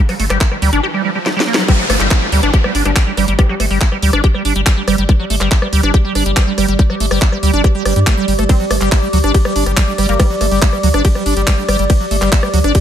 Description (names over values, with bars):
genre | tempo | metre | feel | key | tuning
psychedelic trance | 141 BPM | 4/4 | straight | unclear | A4 = 438 Hz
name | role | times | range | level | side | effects
riser and downlifter | sound effects | 0.0-5.1 s | none | -22 LUFS | left 1 dB | none
warbly tape-like pad | texture | 0.0-12.8 s | G3 to D6 | -21 LUFS | right 1 dB | chorus, built-in reverb, sidechain pumping
liquid acid bass | riff | 0.1-12.8 s | F#3 to G4 | -18 LUFS | moving between left 2 dB and right 5 dB | chorus, auto-pan, sidechain pumping, digital delay
garage drum kit | drums | 0.1-12.8 s | handclaps, hi-hat, ride cymbal, rim click, snare drum | -20 LUFS | equal | none
round analog bass | bass | 0.2-12.7 s | G1 to G2 | -16 LUFS | equal | none
electronic kick drum | drums | 0.4-12.8 s | none | -12 LUFS | equal | none
resonant blip pluck | second line | 1.7-3.6, 8.5-10.5 s | G3 to G4 | -27 LUFS | left 5 dB | chorus, sidechain pumping, high-pass filter, digital delay
room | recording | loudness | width
little or no reverb | none | -11 LUFS | side -10 dB against mid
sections
0.0-1.7 A section; 1.7-12.8 B section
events
riser 0.0-1.7; drum fill 1.3-1.7; band accent 1.5; drop 1.7-12.8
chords
0.0 G5